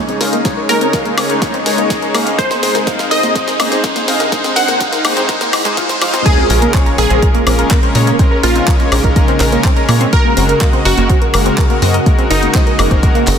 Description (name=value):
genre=progressive house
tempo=124 BPM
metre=4/4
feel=straight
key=Bb minor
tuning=A4 = 442 Hz
part: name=lush unison pad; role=sustained chords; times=0.0-13.4 s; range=C3 to Ab4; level=-20 LUFS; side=right 1 dB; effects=chorus, sidechain pumping
part: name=tight sequenced synth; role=arpeggios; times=0.0-13.2 s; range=F3 to Bb5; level=-20 LUFS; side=right 1 dB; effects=chorus, sidechain pumping, dub echo
part: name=riser and sub drop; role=sound effects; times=0.0-8.2 s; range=none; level=-23 LUFS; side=left 1 dB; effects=none
part: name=soft supersaw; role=stabs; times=0.1-13.2 s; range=Ab3 to F5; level=-18 LUFS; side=left 2 dB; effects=vintage 12-bit sampler grit, sidechain pumping, low-pass filter, dub echo
part: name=deep house drum kit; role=drums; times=0.1-13.4 s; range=crash cymbal, handclaps, hi-hat, snare drum, woodblock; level=-19 LUFS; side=left 1 dB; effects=high-pass filter on snare, high-pass filter on hats, high-pass filter on perc, high-pass filter on cymbals, high-pass filter on room
part: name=electronic kick drum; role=drums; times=0.5-13.1 s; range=none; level=-13 LUFS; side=equal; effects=none
part: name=wide unison pluck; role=melody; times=0.7-13.4 s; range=Eb4 to Gb5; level=-18 LUFS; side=right 1 dB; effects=phaser, cassette tape, sidechain pumping, tape echo
part: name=tight sequencer bass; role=bass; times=6.5-13.4 s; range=Gb1 to Bb2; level=-15 LUFS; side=equal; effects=sidechain pumping
room=moderate lush hall reverb, RT60 2.0 s, digital ambience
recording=dense, heavily limited modern master, high-pass filter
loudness=-10 LUFS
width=side -8 dB against mid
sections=0.0-6.3 A section; 6.3-13.4 B section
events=build-up 0.0-6.3; drum fill 0.0-6.3; riser 0.0-6.3; filter sweep on synth arpeggio sound 0.0-6.3; filter sweep on supersaw synth 0.0-6.3; filter sweep 0.0-6.3; drop 6.3-13.4; impact 6.3-8.2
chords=0.0 Dbsus2; 2.4 Ab; 6.3 Bbm7; 10.1 Gbadd9